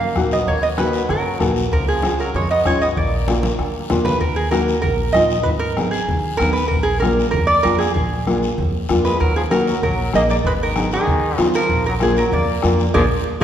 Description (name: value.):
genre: latin, cumbia.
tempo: 192 BPM.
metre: 4/4.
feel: straight.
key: Eb minor, Eb harmonic minor from 4.2 s.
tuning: A4 = 440 Hz.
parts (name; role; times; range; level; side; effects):
lap resonator guitar; melody; 0.0-13.4 s; Ab4 to F5; -20 LUFS; right 2 dB; none.
brilliant trombone; second line; 0.0-3.9, 9.1-13.4 s; Eb3 to Cb4; -27 LUFS; left 3 dB; none.
upright bass; bass; 0.0-13.4 s; Ab1 to Gb2; -24 LUFS; equal; none.
congas; percussion; 0.0-13.4 s; none; -27 LUFS; right 2 dB; none.
nylon-string guitar; accompaniment; 0.2-13.4 s; Ab3 to Cb5; -22 LUFS; left 2 dB; none.
bombo; percussion; 0.2-13.4 s; none; -25 LUFS; left 2 dB; none.
guiro; percussion; 0.2-13.4 s; none; -35 LUFS; left 5 dB; none.
room: wet scoring stage reverb, RT60 1.7 s.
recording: recorded in a church or concert hall.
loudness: -16 LUFS.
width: side -10 dB against mid.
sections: 0.0-4.2 A section; 4.2-13.4 B section.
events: drum fill 3.4-4.2, 12.9-13.4; band accent 12.9-13.4.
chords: 0.0 Ebm; 1.7 Db; 3.0 Bb; 4.2 Ebm; 5.5 Abm; 6.7 Bb7; 9.2 Ebm; 10.5 Abm; 11.7 Bb.